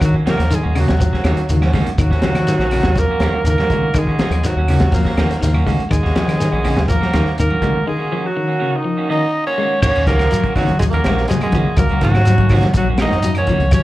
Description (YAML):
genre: afrobeat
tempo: 123 BPM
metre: 4/4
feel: straight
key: Eb minor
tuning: A4 = 440 Hz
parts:
  - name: raspy tenor saxophone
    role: second line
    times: 0.0-13.8 s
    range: Eb3 to Eb4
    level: -25 LUFS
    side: right 3 dB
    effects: plate reverb, slapback echo
  - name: electric guitar at the edge of break-up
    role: arpeggios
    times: 0.0-13.8 s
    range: Db3 to Ab3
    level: -22 LUFS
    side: left 3 dB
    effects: tremolo
  - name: fingered electric bass with an envelope filter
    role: bass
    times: 0.0-13.8 s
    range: Bb1 to Eb3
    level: -18 LUFS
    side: equal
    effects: none
  - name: crunchy breakbeat drum kit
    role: drums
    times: 0.0-13.8 s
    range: crash cymbal, hi-hat, kick drum, snare drum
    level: -20 LUFS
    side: equal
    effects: none
  - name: claves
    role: percussion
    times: 0.0-13.8 s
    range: none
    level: -34 LUFS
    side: left 2 dB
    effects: none
  - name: shekere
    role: percussion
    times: 0.0-13.8 s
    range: none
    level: -23 LUFS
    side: equal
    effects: none
  - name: bright alto saxophone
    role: melody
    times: 0.1-13.8 s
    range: Eb4 to Eb5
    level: -22 LUFS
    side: equal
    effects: plate reverb, slapback echo
  - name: clean electric guitar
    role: stabs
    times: 0.1-13.6 s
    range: Eb3 to Gb4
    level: -26 LUFS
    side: right 5 dB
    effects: spring reverb, slapback echo
  - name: congas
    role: percussion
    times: 0.3-13.6 s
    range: none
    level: -23 LUFS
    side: equal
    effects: none
  - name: breathy baritone saxophone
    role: second line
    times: 4.9-5.8 s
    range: Bb3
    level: -26 LUFS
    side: left 1 dB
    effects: plate reverb
room: moderate club reverb, RT60 0.5 s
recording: live gig heard through the venue's PA, club reverb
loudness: -14 LUFS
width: side -16 dB against mid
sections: 0.0-9.8 A section; 9.8-13.8 B section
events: break 7.9-9.8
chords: 0.0 Ebm7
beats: | 0.02 0.51 1.00 1.50 | 1.99 2.48 2.97 3.46 | 3.95 4.44 4.93 5.42 | 5.91 6.40 6.89 7.38 | 7.87 8.36 8.85 9.34 | 9.82 10.31 10.80 11.29 | 11.78 12.27 12.76 13.24 | 13.73